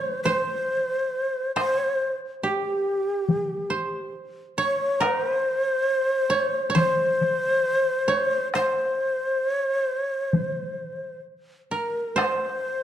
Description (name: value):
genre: japanese traditional, Japanese chamber music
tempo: 68 BPM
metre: 4/4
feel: rubato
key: unclear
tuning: A4 = 440 Hz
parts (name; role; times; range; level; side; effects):
- breathy mellow shakuhachi; melody; 0.0-12.8 s; G4 to Db5; -24 LUFS; left 1 dB; none
- koto; second line; 0.0-12.8 s; G4 to Db5; -27 LUFS; right 3 dB; none
- taiko ensemble; percussion; 0.3-12.4 s; none; -27 LUFS; left 2 dB; none
room: moderate recital hall reverb, RT60 1.5 s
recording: dark, warm production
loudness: -22 LUFS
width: side -10 dB against mid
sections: 0.0-12.2 A section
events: none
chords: none